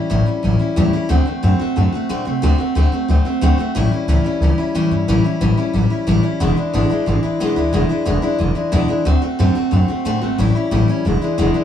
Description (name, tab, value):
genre	rockabilly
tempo	181 BPM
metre	4/4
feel	straight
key	A mixolydian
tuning	A4 = 440 Hz
part	picked steel-string acoustic guitar	accompaniment	0.0-11.6 s	E2 to F#4	-18 LUFS	left 1 dB	none
part	upright bass	bass	0.1-11.6 s	E1 to C3	-17 LUFS	equal	none
room	moderate studio ambience, RT60 0.5 s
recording	band playing live in one room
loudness	-15 LUFS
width	side -9 dB against mid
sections	0.0-11.6 A section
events	none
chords	0.0 A7; 1.1 D7; 3.8 A7; 6.4 E7; 9.1 D7; 10.4 A7; 11.1 E7